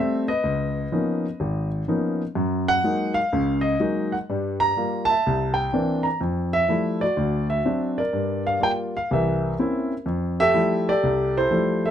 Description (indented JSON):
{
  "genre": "solo jazz",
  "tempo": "124 BPM",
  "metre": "4/4",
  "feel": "swing 66% on 8ths",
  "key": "unclear",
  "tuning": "A4 = 440 Hz",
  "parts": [
    { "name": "warm grand piano", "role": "solo", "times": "0.0-11.9 s", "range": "Ab1 to Bb5", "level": "-20 LUFS", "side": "equal", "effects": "none" }
  ],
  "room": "light reverb",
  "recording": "close, detailed microphones",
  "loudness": "-21 LUFS",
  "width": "side -9 dB against mid",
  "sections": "0.0-10.1 A section; 10.1-11.9 A section",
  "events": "none",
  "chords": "0.4 Db13; 2.3 Gb69; 4.3 Gm7; 5.2 C9; 6.2 Fmaj9; 7.2 D7; 8.1 Gm7; 9.1 C7b9; 10.1 Fmaj9"
}